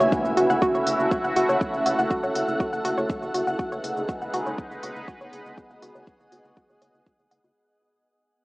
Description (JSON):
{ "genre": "melodic techno", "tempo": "121 BPM", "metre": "4/4", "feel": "straight", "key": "unclear", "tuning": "A4 = 440 Hz", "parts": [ { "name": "sweeping resonant pad", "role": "sustained chords", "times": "0.0-7.5 s", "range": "G#3 to B4", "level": "-29 LUFS", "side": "equal", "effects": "chorus, sidechain pumping, cassette tape" }, { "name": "woody wave-folded pluck", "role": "arpeggios", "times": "0.0-7.5 s", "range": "F#4 to F#5", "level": "-26 LUFS", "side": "equal", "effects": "chorus, sidechain pumping, cassette tape, analog delay" }, { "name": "round analog bass", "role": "bass", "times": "0.0-7.5 s", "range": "E1 to F#1", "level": "-36 LUFS", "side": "equal", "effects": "sidechain pumping" }, { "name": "electronic shaker and hi-hat", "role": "drums", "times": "0.0-7.5 s", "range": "none", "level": "-37 LUFS", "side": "equal", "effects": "sidechain pumping on perc, small room ambience, cassette tape, sidechain pumping on hats" }, { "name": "impact", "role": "sound effects", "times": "0.0-1.6 s", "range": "none", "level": "-36 LUFS", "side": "equal", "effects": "none" }, { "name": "granular cloud pad", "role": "texture", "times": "0.0-7.6 s", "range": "B3 to G#5", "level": "-28 LUFS", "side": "equal", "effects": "built-in reverb, sidechain pumping, cassette tape" }, { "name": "electronic kick drum", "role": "drums", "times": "0.1-7.2 s", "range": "none", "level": "-28 LUFS", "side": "equal", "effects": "small room ambience, cassette tape" } ], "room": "wet spring reverb, RT60 2.4 s", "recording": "home recording on cassette, small speaker sound", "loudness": "-22 LUFS", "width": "side -23 dB against mid", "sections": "0.0-7.6 A section", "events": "fade-out 0.0-7.6; impact 0.0-1.6; filter sweep on synth pluck 0.0-7.6", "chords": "0.0 F#m7; 3.6 G#m7/F#" }